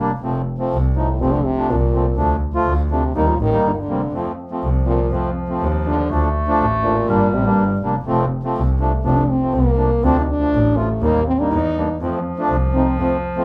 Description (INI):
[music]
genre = klezmer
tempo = 122 BPM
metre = 2/4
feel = straight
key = unclear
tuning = A4 = 440 Hz
[part]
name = mellow accordion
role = accompaniment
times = 0.0-13.4 s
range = F3 to F4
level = -24 LUFS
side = equal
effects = none
[part]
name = rich double bass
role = bass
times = 0.0-13.1 s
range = F1 to F2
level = -23 LUFS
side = equal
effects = none
[part]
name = warm French horn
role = melody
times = 1.0-13.0 s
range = G2 to Eb4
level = -22 LUFS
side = equal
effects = none
[part]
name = warm clarinet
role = second line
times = 4.1-7.8, 12.0-13.4 s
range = F3 to A3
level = -26 LUFS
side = equal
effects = none
[sound]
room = wet small room reverb, RT60 0.5 s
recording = band playing live in one room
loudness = -19 LUFS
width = mono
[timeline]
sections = 0.2-8.1 A section; 8.1-13.4 A section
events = none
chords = 0.2 F; 2.2 Dm; 3.2 Eb; 4.1 F; 6.1 Dm; 7.1 Gm; 8.1 F; 10.0 Dm; 11.0 Eb; 12.0 F